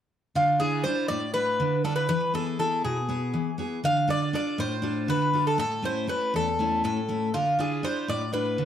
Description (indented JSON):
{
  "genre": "greek folk, Greek bouzouki band",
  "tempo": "241 BPM (eighths)",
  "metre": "7/8",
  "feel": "straight",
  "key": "D dorian sharp4",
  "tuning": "A4 = 442 Hz",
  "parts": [
    { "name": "Greek bouzouki", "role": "melody", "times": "0.4-8.7 s", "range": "F4 to F5", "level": "-26 LUFS", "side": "left 1 dB", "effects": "slapback echo" },
    { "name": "picked steel-string acoustic guitar", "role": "accompaniment", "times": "0.4-8.7 s", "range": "E2 to A4", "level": "-28 LUFS", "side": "right 1 dB", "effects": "none" }
  ],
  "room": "moderate small room reverb, RT60 0.5 s",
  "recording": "dark, warm production",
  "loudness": "-24 LUFS",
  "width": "side -9 dB against mid",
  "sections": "0.4-8.7 A section",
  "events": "none",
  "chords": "0.4 Dmadd9; 2.1 E; 3.8 Dm; 5.6 A; 7.3 Dmadd9"
}